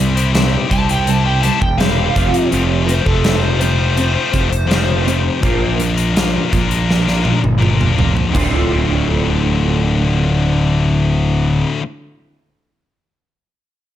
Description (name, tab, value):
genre	quiet-loud alternative rock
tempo	82 BPM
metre	4/4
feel	straight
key	D minor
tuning	A4 = 439 Hz
part	electric guitar through a small old amp	arpeggios	0.0-11.9 s	D2 to F4	-22 LUFS	right 3 dB	ensemble chorus
part	high-gain distorted guitar	riff	0.0-11.8 s	D2 to C5	-18 LUFS	left 5 dB	distortion
part	fuzz fingered electric bass	bass	0.0-11.6 s	D1 to C2	-17 LUFS	right 1 dB	overdrive
part	huge arena drum kit	drums	0.2-8.5 s	hi-hat, kick drum, snare drum, splash cymbal, toms	-19 LUFS	equal	none
part	lead guitar through a small cranked amp	melody	0.7-5.7 s	A4 to A5	-21 LUFS	equal	overdrive, slapback echo
room	light reverb, small room reverb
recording	none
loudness	-13 LUFS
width	side -12 dB against mid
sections	0.0-8.3 A section; 8.3-11.3 B section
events	lead electric guitar solo 0.0-8.3; drum fill 6.9-8.3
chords	0.0 C; 2.2 F; 5.4 Bb6; 8.3 Dm7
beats	0.34 1.07 1.79 | 2.52 3.24 3.97 4.70 | 5.42 6.15 6.88 7.61 | 8.34 9.07 9.80 10.53